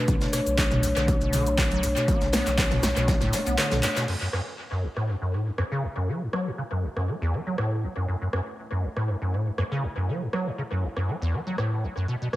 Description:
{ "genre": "acid house", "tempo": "120 BPM", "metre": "4/4", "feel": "swing 54% on 16ths", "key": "F# minor", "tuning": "A4 = 440 Hz", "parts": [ { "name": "dark analog pad", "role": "sustained chords", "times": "0.0-12.4 s", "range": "A3 to E5", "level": "-31 LUFS", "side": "left 1 dB", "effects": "chorus, sidechain pumping" }, { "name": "acid bass, square", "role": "riff", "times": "0.0-12.4 s", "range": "F#1 to B3", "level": "-27 LUFS", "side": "equal", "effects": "ensemble chorus, sidechain pumping, tape echo" }, { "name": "warm sub bass", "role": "bass", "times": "0.1-3.8 s", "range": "B1", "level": "-29 LUFS", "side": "equal", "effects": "sidechain pumping" }, { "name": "electronic kick drum", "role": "drums", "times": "0.1-3.2 s", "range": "none", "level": "-25 LUFS", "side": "equal", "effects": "overdrive" }, { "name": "punchy analog drum machine", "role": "drums", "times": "0.1-12.4 s", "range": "crash cymbal, handclaps, hi-hat, rim click, shaker, snare drum, toms", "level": "-30 LUFS", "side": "equal", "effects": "overdrive, tape echo" }, { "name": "vintage brush drum kit", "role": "drums", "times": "0.1-4.1 s", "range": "hi-hat, snare drum", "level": "-37 LUFS", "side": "left 1 dB", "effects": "none" } ], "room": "wet spring reverb, RT60 1.7 s", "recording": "echo-heavy mix", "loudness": "-24 LUFS", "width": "side -16 dB against mid", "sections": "0.0-4.1 A section; 4.1-12.4 B section", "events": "drop 0.0-4.1; kick drops out 3.6-4.1; drum fill 3.8; band accent 3.8", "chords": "0.0 Bm7; 4.1 F#m7" }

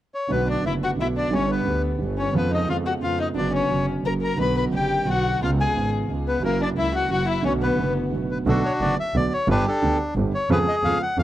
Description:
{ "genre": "tango", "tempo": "177 BPM", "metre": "3/4", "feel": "rubato", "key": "B minor", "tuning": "A4 = 442 Hz", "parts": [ { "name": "bandoneon", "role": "melody", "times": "0.1-11.2 s", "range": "D4 to B5", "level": "-25 LUFS", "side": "left 1 dB", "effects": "none" }, { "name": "dark violin", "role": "second line", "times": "0.3-7.9 s", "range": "A#3 to B4", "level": "-27 LUFS", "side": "left 5 dB", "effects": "tape echo" }, { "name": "warm grand piano", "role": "accompaniment", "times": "0.3-11.2 s", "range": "F#1 to G4", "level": "-25 LUFS", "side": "right 3 dB", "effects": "none" }, { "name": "clear double bass", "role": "bass", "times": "0.3-11.2 s", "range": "F#1 to E#2", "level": "-27 LUFS", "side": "right 1 dB", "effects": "none" } ], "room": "little or no reverb", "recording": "dry, close 1970s-style studio recording", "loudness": "-20 LUFS", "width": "side -13 dB against mid", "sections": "0.3-8.5 A section; 8.5-11.2 A section", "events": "break 8.1-8.5", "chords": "0.3 Bm7; 1.3 G; 2.3 C#7/E#; 3.4 Bm/F#; 4.0 F#; 4.4 Bm; 5.4 C#7; 6.4 F#7; 7.4 Bm7; 9.5 G; 10.5 C#7/E#" }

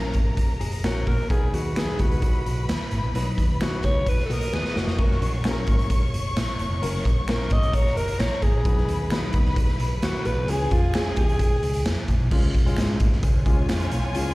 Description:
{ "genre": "uptempo 1960s-style soul", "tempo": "131 BPM", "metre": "4/4", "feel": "straight", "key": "F# major", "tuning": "A4 = 439 Hz", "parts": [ { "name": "warm studio string section", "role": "second line", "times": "0.0-14.3 s", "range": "E#4 to D#6", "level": "-34 LUFS", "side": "left 1 dB", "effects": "plate reverb, slapback echo" }, { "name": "warm upright piano", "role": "accompaniment", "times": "0.0-14.3 s", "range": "E#3 to B4", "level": "-31 LUFS", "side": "left 2 dB", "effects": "plate reverb, slapback echo" }, { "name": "vintage muted picked electric bass", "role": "bass", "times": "0.0-14.3 s", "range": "E#1 to G#2", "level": "-26 LUFS", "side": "equal", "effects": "none" }, { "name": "raw garage drum kit", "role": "drums", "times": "0.1-14.3 s", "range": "crash cymbal, hi-hat, kick drum, snare drum, splash cymbal", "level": "-23 LUFS", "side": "equal", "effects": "none" }, { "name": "archtop guitar, miked and amplified", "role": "riff", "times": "0.6-1.5, 4.3-5.2 s", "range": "A#3 to A#4", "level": "-34 LUFS", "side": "left 5 dB", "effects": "slapback echo" }, { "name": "finger snap", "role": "percussion", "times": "0.8-13.8 s", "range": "none", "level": "-39 LUFS", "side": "right 1 dB", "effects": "none" }, { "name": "breathy alto saxophone", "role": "melody", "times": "0.9-11.8 s", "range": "E#4 to D#5", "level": "-28 LUFS", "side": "equal", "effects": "plate reverb, slapback echo" } ], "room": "little or no reverb", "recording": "live gig heard through the venue's PA, recital hall reverb", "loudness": "-20 LUFS", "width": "side -20 dB against mid", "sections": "0.0-12.3 A section; 12.3-14.3 B section", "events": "alto saxophone solo 0.0-12.3; drum fill 4.5-5.0", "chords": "0.0 F#; 1.3 B; 5.0 F#; 8.7 B; 10.5 C#" }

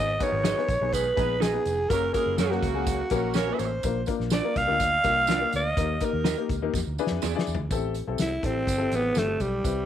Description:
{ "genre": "uptempo 1960s-style soul", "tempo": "124 BPM", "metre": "4/4", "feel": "straight", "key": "G# minor", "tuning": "A4 = 440 Hz", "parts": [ { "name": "growling alto saxophone", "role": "melody", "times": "0.0-9.9 s", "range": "G3 to E#5", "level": "-26 LUFS", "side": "right 1 dB", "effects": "none" }, { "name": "warm upright piano", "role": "accompaniment", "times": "0.0-9.9 s", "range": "A#3 to D5", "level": "-31 LUFS", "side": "left 10 dB", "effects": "none" }, { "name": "vintage muted fingered electric bass", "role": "bass", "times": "0.0-9.9 s", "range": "E#1 to F#2", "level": "-31 LUFS", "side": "right 1 dB", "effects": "none" }, { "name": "warm horn section", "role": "second line", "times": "0.2-3.7 s", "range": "C#3 to C#5", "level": "-34 LUFS", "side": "right 13 dB", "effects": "none" }, { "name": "natural country drum kit", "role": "drums", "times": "0.2-9.8 s", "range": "hi-hat, kick drum, snare drum, toms", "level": "-30 LUFS", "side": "left 1 dB", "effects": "none" }, { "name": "tambourine", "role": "percussion", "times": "0.2-9.8 s", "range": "none", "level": "-41 LUFS", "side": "right 15 dB", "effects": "none" }, { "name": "electric guitar through a small old amp", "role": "stabs", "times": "0.4-7.3 s", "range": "B3 to D#5", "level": "-33 LUFS", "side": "right 14 dB", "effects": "warbly pitch drift" } ], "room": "moderate spring reverb, RT60 1.6 s, studio ambience", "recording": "1960s-style stereo with parts hard left and right", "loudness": "-23 LUFS", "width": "side -10 dB against mid", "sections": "0.0-7.7 A section; 7.7-9.9 B section", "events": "drum fill 6.7-7.7", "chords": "0.0 G#m; 1.9 F#; 3.8 A#; 5.8 D#; 6.7 E7; 7.7 Am7" }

